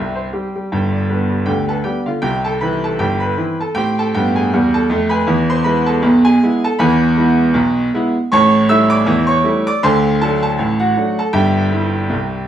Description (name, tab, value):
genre	ragtime piano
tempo	79 BPM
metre	2/4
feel	swing 56% on 16ths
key	C major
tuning	A4 = 436 Hz
part	clear baby grand piano	solo	0.0-12.5 s	G1 to E6	-13 LUFS	right 1 dB	none
room	wet studio reverb, RT60 0.8 s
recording	studio reverb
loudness	-13 LUFS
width	side -10 dB against mid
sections	0.0-2.2 A section; 2.2-12.5 B section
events	none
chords	0.0 C; 0.7 G; 2.2 C; 3.8 Am; 5.3 E; 8.3 A7; 9.8 D7; 11.3 C/G